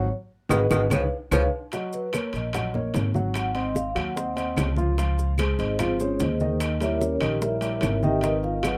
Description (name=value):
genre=Afro-Cuban jazz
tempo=148 BPM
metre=4/4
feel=straight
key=Eb minor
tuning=A4 = 439 Hz
part: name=vibraphone with soft mallets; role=melody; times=0.0-8.8 s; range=C4 to G5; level=-30 LUFS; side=equal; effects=none
part: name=mellow tenor saxophone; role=second line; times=0.0-1.4 s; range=D#3 to E#3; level=-32 LUFS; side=equal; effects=none
part: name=warm upright piano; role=accompaniment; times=0.0-8.8 s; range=Eb3 to Gb5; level=-32 LUFS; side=equal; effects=none
part: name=upright bass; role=bass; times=0.0-8.8 s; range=G#1 to Eb2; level=-29 LUFS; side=equal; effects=none
part: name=bongos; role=percussion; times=0.5-8.8 s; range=none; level=-34 LUFS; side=equal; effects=none
part: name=claves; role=percussion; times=0.5-8.8 s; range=none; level=-39 LUFS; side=equal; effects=none
part: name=congas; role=percussion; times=0.5-8.8 s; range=none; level=-34 LUFS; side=equal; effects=none
part: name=maracas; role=percussion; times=0.5-8.8 s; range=none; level=-44 LUFS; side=equal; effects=none
part: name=timbales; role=percussion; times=0.5-8.8 s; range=none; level=-37 LUFS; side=equal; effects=none
room=light reverb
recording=none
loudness=-25 LUFS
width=mono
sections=0.0-1.7 A section; 1.7-8.8 B section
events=band accent 0.1-1.7; drum fill 1.3-1.7; vibraphone solo 1.7-8.8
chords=0.1 G#m7; 0.9 C#7; 1.7 Ebm7; 3.4 Ab6; 5.0 Dbmaj9; 6.6 Eb7b9; 8.2 Abm9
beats=| 0.10 0.51 0.92 1.32 | 1.73 2.14 2.54 2.95 | 3.36 3.76 4.17 4.58 | 4.98 5.39 5.80 6.20 | 6.61 7.01 7.42 7.83 | 8.23 8.64